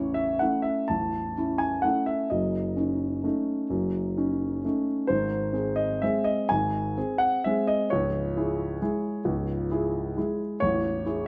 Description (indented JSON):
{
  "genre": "classical, piano waltz",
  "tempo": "130 BPM",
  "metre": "3/4",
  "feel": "uneven beats, rubato",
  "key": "C# minor",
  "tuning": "A4 = 440 Hz",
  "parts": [
    { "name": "warm concert grand piano", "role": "solo", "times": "0.0-11.3 s", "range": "A0 to A5", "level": "-27 LUFS", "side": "equal", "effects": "none" }
  ],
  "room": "moderate large studio reverb, RT60 1.3 s",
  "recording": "none",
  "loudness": "-27 LUFS",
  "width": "mono",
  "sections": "0.0-11.3 A section",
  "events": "none",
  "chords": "0.0 A; 2.3 D#m7b5/F#; 5.1 G#; 7.9 C#m; 10.6 Amaj7"
}